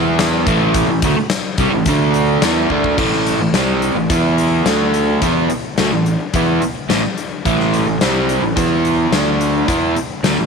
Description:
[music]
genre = classic rock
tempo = 107 BPM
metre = 4/4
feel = straight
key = A minor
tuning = A4 = 440 Hz
[part]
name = crunchy overdriven guitar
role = riff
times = 0.0-10.5 s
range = A2 to E4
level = -15 LUFS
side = right 1 dB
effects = none
[part]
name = fuzz fingered electric bass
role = bass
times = 0.0-10.5 s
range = A1 to E2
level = -22 LUFS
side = right 1 dB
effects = overdrive
[part]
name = huge arena drum kit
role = drums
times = 0.2-10.4 s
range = crash cymbal, hi-hat, kick drum, snare drum, tambourine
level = -20 LUFS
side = left 4 dB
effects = none
[sound]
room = light reverb, studio reverb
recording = 1960s-style stereo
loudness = -14 LUFS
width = side -5 dB against mid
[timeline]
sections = 0.0-3.0 A section; 3.0-10.5 B section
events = drum fill 2.7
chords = 0.5 Am; 1.9 D5; 2.4 A5; 3.0 Am; 4.1 E5; 4.7 D5; 5.2 Am; 8.6 E5; 9.1 D5; 9.7 A5

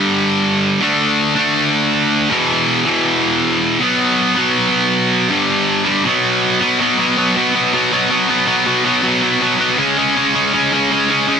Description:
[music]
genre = punk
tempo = 160 BPM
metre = 4/4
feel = straight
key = unclear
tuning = A4 = 440 Hz
[part]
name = distorted electric guitar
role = solo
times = 0.0-11.4 s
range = E2 to D4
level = -12 LUFS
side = equal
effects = overdrive
[sound]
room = light reverb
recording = dense, heavily limited modern master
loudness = -12 LUFS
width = side -6 dB against mid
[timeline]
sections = 0.0-6.8 A section; 6.8-11.4 B section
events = none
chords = 0.0 G5; 0.8 D5; 2.3 E5; 3.8 B5; 5.3 G5; 6.0 B5; 9.8 C#5

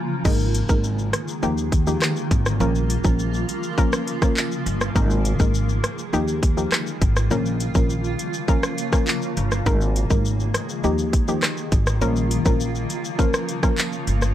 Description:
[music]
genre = dancehall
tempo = 102 BPM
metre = 4/4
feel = straight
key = Bb dorian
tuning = A4 = 438 Hz
[part]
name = granular cloud pad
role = sustained chords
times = 0.0-14.3 s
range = Db3 to Ab4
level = -28 LUFS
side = equal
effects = built-in reverb, sidechain pumping
[part]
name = soft round pluck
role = accompaniment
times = 0.2-13.8 s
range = F3 to Bb4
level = -25 LUFS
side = left 1 dB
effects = chorus
[part]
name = upright bass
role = bass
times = 0.3-14.3 s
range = G1 to Eb2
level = -23 LUFS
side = equal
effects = none
[part]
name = island pop drum kit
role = drums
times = 0.3-14.3 s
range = crash cymbal, handclaps, hi-hat, kick drum, rim click, shaker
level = -22 LUFS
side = equal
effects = none
[sound]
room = digital ambience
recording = none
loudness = -19 LUFS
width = side -12 dB against mid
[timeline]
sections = 0.3-14.3 A section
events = break 0.0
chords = 0.3 Absus2; 1.4 Ebadd9; 2.6 Bbm; 5.0 Absus2; 6.1 Ebadd9; 7.3 Bbm; 9.7 Absus2; 10.8 Ebadd9; 12.0 Bbm

